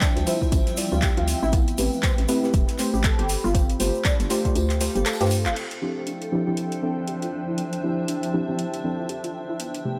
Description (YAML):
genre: deep house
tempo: 119 BPM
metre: 4/4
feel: swing 59% on 16ths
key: D dorian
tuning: A4 = 439 Hz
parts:
  - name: warbly dusty pluck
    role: arpeggios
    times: 0.0-9.7 s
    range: B3 to A4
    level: -34 LUFS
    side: equal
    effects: lush chorus, sidechain pumping, tape echo
  - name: deep mellow chord stab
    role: stabs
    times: 0.0-10.0 s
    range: C3 to D5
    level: -29 LUFS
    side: equal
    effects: chorus, sidechain pumping, tape echo
  - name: deep house drum kit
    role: drums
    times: 0.0-9.8 s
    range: crash cymbal, handclaps, hi-hat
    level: -33 LUFS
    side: equal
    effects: overdrive, studio reverb
  - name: electronic kick drum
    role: drums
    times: 0.0-4.5 s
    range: none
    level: -25 LUFS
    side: equal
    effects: overdrive, studio reverb
  - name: tambourine and snare drum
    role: drums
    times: 0.0-5.4 s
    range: none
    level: -41 LUFS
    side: equal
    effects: none
  - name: tube shaker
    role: percussion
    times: 0.0-5.5 s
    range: none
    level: -40 LUFS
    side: equal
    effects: none
  - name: granular cloud pad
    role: texture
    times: 0.0-10.0 s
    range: F3 to B5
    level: -36 LUFS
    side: equal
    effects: built-in reverb, sidechain pumping
  - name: hollow knocking FM bass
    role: bass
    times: 0.2-5.5 s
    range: E1 to G2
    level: -28 LUFS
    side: equal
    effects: none
  - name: airy breathy pad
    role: sustained chords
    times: 6.0-10.0 s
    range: F3 to A5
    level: -37 LUFS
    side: equal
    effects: chorus, sidechain pumping
room: light reverb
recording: none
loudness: -24 LUFS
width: mono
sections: 0.0-5.6 A section; 5.6-10.0 B section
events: kick drops out 4.6-5.6; drum fill 5.1-5.6; band accent 5.4; filter sweep on synth pluck 5.6-10.0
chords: 0.0 Dm11; 1.5 Am9; 3.3 G9sus4; 5.6 Dm11